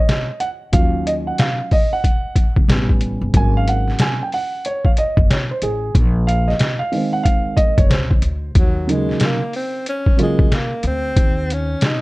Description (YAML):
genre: hip hop, jazz-hop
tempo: 92 BPM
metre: 4/4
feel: swing 63% on 16ths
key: Eb dorian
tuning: A4 = 440 Hz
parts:
  - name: dark concert grand piano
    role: accompaniment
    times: 0.0-10.4 s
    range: Db3 to Ab5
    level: -20 LUFS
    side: right 2 dB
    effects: plate reverb
  - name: trip hop sampler-style drum kit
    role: drums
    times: 0.1-12.0 s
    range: hi-hat, kick drum, snare drum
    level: -16 LUFS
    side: equal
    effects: none
  - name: upright bass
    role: bass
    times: 0.7-11.7 s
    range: Gb1 to Eb2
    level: -20 LUFS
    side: equal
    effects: none
  - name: breathy tenor saxophone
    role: melody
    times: 8.6-12.0 s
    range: Gb3 to Eb4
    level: -23 LUFS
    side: equal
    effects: plate reverb
room: light reverb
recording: none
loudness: -15 LUFS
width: side -21 dB against mid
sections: 0.0-8.6 A section; 8.6-12.0 A section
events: break 0.0-0.7; grand piano solo 0.0-8.6; tenor saxophone solo 8.6-12.0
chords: 0.0 Ebm7; 2.7 A9; 3.3 Ab7sus4; 6.0 Bb9sus4; 8.6 Ebm7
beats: 0.08 | 0.73 1.39 2.04 2.69 | 3.34 3.99 4.65 5.30 | 5.95 6.60 7.25 7.91 | 8.56 9.21 9.86 10.52 | 11.17 11.82